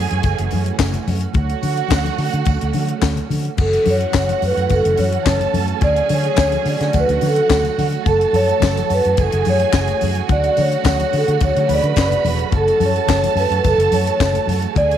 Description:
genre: disco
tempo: 107 BPM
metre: 4/4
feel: straight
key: unclear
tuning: A4 = 440 Hz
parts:
  - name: warm studio violin section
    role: second line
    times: 0.0-15.0 s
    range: F#4 to B5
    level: -24 LUFS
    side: right 13 dB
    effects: none
  - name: rich studio string section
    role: sustained chords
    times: 0.0-15.0 s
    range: C#3 to F#4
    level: -26 LUFS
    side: right 12 dB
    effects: none
  - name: fingered electric bass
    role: bass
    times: 0.0-14.9 s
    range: E1 to D3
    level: -20 LUFS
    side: equal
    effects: none
  - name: tight funk drum kit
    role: drums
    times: 0.1-15.0 s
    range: crash cymbal, handclaps, hi-hat, kick drum, snare drum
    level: -21 LUFS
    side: left 3 dB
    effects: none
  - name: congas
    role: percussion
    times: 0.2-14.9 s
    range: none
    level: -29 LUFS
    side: left 10 dB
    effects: none
  - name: tambourine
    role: percussion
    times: 0.2-14.6 s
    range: none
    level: -40 LUFS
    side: right 16 dB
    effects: none
  - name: vibraphone with soft mallets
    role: melody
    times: 3.6-15.0 s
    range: A4 to D5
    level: -18 LUFS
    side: equal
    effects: none
room: light reverb, small room ambience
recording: 1960s-style stereo with parts hard left and right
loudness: -15 LUFS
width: side -10 dB against mid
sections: 0.0-3.6 A section; 3.6-15.0 B section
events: none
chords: 0.0 F#m7; 1.4 Dmaj7; 3.6 F#m7; 5.8 Dmaj7; 8.1 F#m7; 10.3 Dmaj7; 12.5 F#m7

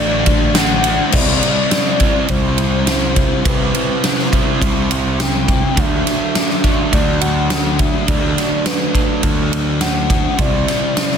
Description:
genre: rock, shoegaze and dream pop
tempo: 104 BPM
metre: 4/4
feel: straight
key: unclear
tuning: A4 = 445 Hz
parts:
  - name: hollow clarinet-like synth lead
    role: melody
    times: 0.0-11.2 s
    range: B4 to G5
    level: -22 LUFS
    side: left 2 dB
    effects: chorus, slapback echo
  - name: crunchy overdriven guitar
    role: riff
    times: 0.0-1.1 s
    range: D3 to D4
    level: -20 LUFS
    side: equal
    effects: none
  - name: overdriven electric guitar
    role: riff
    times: 0.0-11.2 s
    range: C3 to E4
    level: -21 LUFS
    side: right 13 dB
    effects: reverse reverb
  - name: thick fuzz guitar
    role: riff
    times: 0.0-11.2 s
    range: C3 to D4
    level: -21 LUFS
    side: left 11 dB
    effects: distortion, ensemble chorus
  - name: growling picked electric bass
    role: bass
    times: 0.0-10.6 s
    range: A1 to D2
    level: -21 LUFS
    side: equal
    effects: overdrive
  - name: huge arena drum kit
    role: drums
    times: 0.3-11.2 s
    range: crash cymbal, kick drum, ride cymbal, snare drum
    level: -17 LUFS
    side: equal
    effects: none
room: small room ambience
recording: dense, heavily limited modern master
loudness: -13 LUFS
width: side -7 dB against mid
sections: 0.0-1.1 A section; 1.1-11.2 B section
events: none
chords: 0.0 D; 1.1 C; 5.8 D; 10.4 C

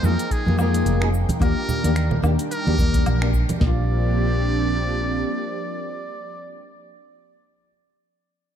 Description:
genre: sunset chillout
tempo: 109 BPM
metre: 4/4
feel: swing 57% on 16ths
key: Bb mixolydian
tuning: A4 = 442 Hz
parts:
  - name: trumpet with metal mute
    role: melody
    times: 0.0-6.6 s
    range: Ab4 to D5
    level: -30 LUFS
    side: equal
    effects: ping-pong delay
  - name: nylon-string guitar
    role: accompaniment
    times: 0.0-6.7 s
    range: G3 to Bb4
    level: -27 LUFS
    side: moving between left 5 dB and right 1 dB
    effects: auto-pan
  - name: lush unison pad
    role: sustained chords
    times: 0.0-6.6 s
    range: Eb3 to G5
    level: -28 LUFS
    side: right 1 dB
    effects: chorus, phaser, vintage 12-bit sampler grit
  - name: woody fretless electric bass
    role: bass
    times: 0.0-5.2 s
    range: F1 to F2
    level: -21 LUFS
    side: equal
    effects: none
  - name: deep house drum kit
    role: drums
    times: 0.0-3.6 s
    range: finger snaps, hi-hat, shaker, woodblock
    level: -33 LUFS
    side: left 2 dB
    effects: small room ambience
  - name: congas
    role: percussion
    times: 0.0-3.6 s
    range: none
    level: -28 LUFS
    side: right 2 dB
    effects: none
  - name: soft vintage rhythm box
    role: drums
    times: 0.3-3.8 s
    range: kick drum, snare drum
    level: -22 LUFS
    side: equal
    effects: small room ambience
room: light reverb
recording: dark, warm production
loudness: -19 LUFS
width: side -9 dB against mid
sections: 0.0-3.6 A section; 3.6-5.8 B section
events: band accent 3.2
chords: 0.0 Fm11; 1.4 Ebmaj7; 3.6 Bb69

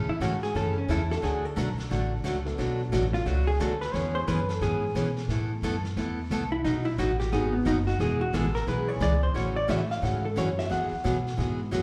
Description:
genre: country, western swing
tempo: 177 BPM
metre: 4/4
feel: swing 63% on 8ths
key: A major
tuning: A4 = 440 Hz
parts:
  - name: picked steel-string acoustic guitar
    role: accompaniment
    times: 0.0-11.8 s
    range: B2 to A4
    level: -33 LUFS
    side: equal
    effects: slapback echo
  - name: upright bass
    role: bass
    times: 0.0-11.8 s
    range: E1 to B2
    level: -32 LUFS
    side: equal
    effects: none
  - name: vintage hollow-body jazz guitar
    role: second line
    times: 0.1-11.7 s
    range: B3 to F#5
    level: -32 LUFS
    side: equal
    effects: slapback echo
  - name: vintage brush drum kit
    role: drums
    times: 0.2-11.8 s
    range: brushed snare drum, hi-hat, snare drum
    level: -44 LUFS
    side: equal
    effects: slapback echo
  - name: warm upright piano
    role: accompaniment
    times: 1.1-5.8, 8.9-11.8 s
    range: E3 to B4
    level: -41 LUFS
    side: equal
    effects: slapback echo
room: light reverb, small room reverb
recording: live gig heard through the venue's PA, club reverb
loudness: -28 LUFS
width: mono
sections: 0.0-11.8 A section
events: hollow-body jazz guitar solo 0.0-11.8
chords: 0.0 A; 1.2 Bm7; 3.9 E6; 5.3 Asus2; 6.6 B; 8.0 E; 9.3 A6; 10.7 Eadd9

